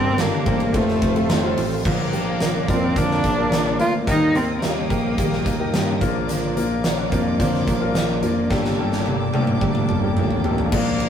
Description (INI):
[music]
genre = piano-driven pop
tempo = 108 BPM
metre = 4/4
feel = straight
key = Bb major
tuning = A4 = 440 Hz
[part]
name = warm cello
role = melody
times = 0.0-5.7, 10.8-11.1 s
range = A3 to F4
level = -23 LUFS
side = right 1 dB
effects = none
[part]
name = clear concert grand piano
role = accompaniment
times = 0.0-11.1 s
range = G2 to D5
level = -25 LUFS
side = left 3 dB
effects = none
[part]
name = warm studio string section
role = sustained chords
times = 0.0-11.1 s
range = Bb3 to Eb6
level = -31 LUFS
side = equal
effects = none
[part]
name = picked steel-string acoustic guitar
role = riff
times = 0.0-10.7 s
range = G2 to Bb4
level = -27 LUFS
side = right 2 dB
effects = none
[part]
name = modern bright picked electric bass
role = bass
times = 0.0-11.1 s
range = F1 to G2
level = -26 LUFS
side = equal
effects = none
[part]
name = huge arena drum kit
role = drums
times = 0.2-11.1 s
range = crash cymbal, hi-hat, kick drum, ride cymbal, snare drum, toms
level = -23 LUFS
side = equal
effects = none
[sound]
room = moderate stone room reverb, RT60 0.9 s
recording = rough rehearsal-room recording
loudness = -18 LUFS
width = side -8 dB against mid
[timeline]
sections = 0.0-1.9 A section; 1.9-10.7 B section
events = drum fill 8.5-10.7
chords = 0.0 Gmadd9; 0.7 F; 1.9 Bb; 4.1 Eb; 6.0 Bb; 8.5 Gmadd9